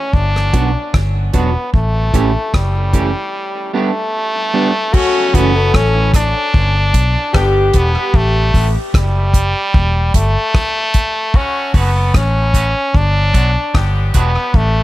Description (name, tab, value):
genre	dub reggae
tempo	75 BPM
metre	4/4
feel	swing 56% on 16ths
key	unclear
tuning	A4 = 439 Hz
part	stopped French horn	melody	0.0-14.8 s	G3 to D4	-18 LUFS	equal	dub echo
part	vintage muted fingered electric bass	bass	0.1-14.8 s	E1 to B1	-15 LUFS	equal	none
part	damped 70s drum kit	drums	0.1-14.7 s	crash cymbal, hi-hat, kick drum, rim click	-14 LUFS	equal	none
part	electric guitar at the edge of break-up	accompaniment	0.5-5.5, 11.7-14.3 s	E3 to G4	-22 LUFS	right 4 dB	lush chorus, high-pass filter, dub echo
part	warm horn section	second line	4.9-14.3 s	C#3 to A4	-20 LUFS	left 2 dB	high-pass filter, dub echo
room	small room ambience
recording	none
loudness	-12 LUFS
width	side -16 dB against mid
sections	0.0-4.9 A section; 4.9-14.8 B section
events	filter sweep 8.1-14.5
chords	0.1 Gmaj7; 1.7 A7; 3.3 Gadd9; 4.9 F#m7; 6.5 G; 8.1 F#m; 9.7 Em; 11.3 F#m7; 12.9 Gmaj7